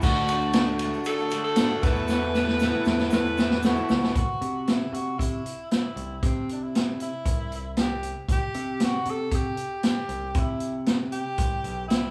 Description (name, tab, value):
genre	folk rock and heartland rock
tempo	116 BPM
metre	4/4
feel	straight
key	unclear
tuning	A4 = 440 Hz
part	clear tenor saxophone	melody	0.0-12.1 s	C4 to B4	-33 LUFS	equal	analog delay
part	bright grand piano	accompaniment	0.0-4.0 s	A3 to B4	-41 LUFS	equal	none
part	picked twelve-string acoustic guitar	accompaniment	0.0-4.2 s	E2 to F#4	-37 LUFS	equal	none
part	mellow tonewheel organ	sustained chords	0.0-4.1 s	none	barely audible	none	none
part	electric guitar through a small old amp	riff	0.0-4.2 s	E2 to F#4	-33 LUFS	equal	warbly pitch drift
part	picked electric bass	bass	0.0-12.1 s	B1 to C3	-34 LUFS	equal	none
part	vintage drum kit	drums	0.0-12.0 s	crash cymbal, hi-hat, kick drum, ride cymbal, snare drum	-27 LUFS	equal	none
part	tube shaker	percussion	0.0-4.0 s	none	-53 LUFS	equal	none
room	moderate large studio reverb, RT60 0.9 s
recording	band playing live in one room, small room ambience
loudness	-26 LUFS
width	mono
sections	0.0-4.2 A section; 4.2-12.1 B section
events	drum fill 2.1-4.2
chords	0.0 D; 1.8 Asus2/E; 4.2 C